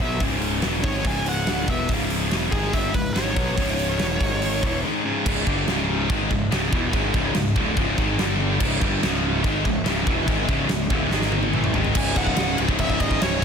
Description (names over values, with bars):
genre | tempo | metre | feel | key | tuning
heavy metal | 143 BPM | 4/4 | straight | C# minor | A4 = 435 Hz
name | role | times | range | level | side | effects
high-gain lead guitar | melody | 0.0-4.8, 12.0-13.4 s | G#4 to G#5 | -29 LUFS | right 1 dB | distortion, tape echo
heavy high-gain guitar | riff | 0.0-13.4 s | C#2 to B3 | -26 LUFS | left 12 dB | distortion
heavy high-gain guitar | riff | 0.0-13.4 s | C#2 to B3 | -28 LUFS | right 15 dB | distortion
fuzz picked electric bass | bass | 0.0-13.4 s | C#1 to B1 | -27 LUFS | equal | overdrive
big rock drum kit | drums | 0.0-13.4 s | china cymbal, crash cymbal, hi-hat, kick drum, snare drum, toms | -25 LUFS | equal | none
scooped high-gain guitar | riff | 5.3-13.4 s | C#2 to E4 | -30 LUFS | right 2 dB | distortion
rich chamber string section | sustained chords | 8.6-13.4 s | D#3 to E5 | -36 LUFS | equal | none
room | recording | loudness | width
small room reverb | dense, heavily limited modern master | -20 LUFS | side -6 dB against mid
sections
0.0-5.3 A section; 5.3-12.0 B section; 12.0-13.4 C section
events
drum fill 11.1-12.0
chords
0.0 C#m; 4.2 G#5; 4.6 C#m; 8.2 G5; 8.6 C#m; 11.1 G#5; 11.5 C#m